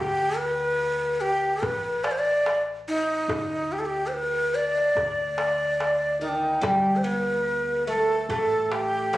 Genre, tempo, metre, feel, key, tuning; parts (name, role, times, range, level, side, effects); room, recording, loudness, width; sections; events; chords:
Turkish makam ensemble; 72 BPM; 4/4; straight; D makam hicaz; A4 = 440 Hz
breathy bright ney; melody; 0.0-9.2 s; D4 to D5; -24 LUFS; equal; slapback echo, plate reverb
upright bass; bass; 0.0-9.2 s; A1 to D2; -41 LUFS; left 1 dB
darbuka; percussion; 0.4-9.2 s; -31 LUFS; equal
oud; second line; 6.2-9.2 s; Eb3 to B3-40c; -26 LUFS; equal
wet studio reverb, RT60 0.6 s; recorded on a phone in the room, studio reverb; -22 LUFS; side -16 dB against mid
0.0-6.6 A section; 6.6-9.2 A section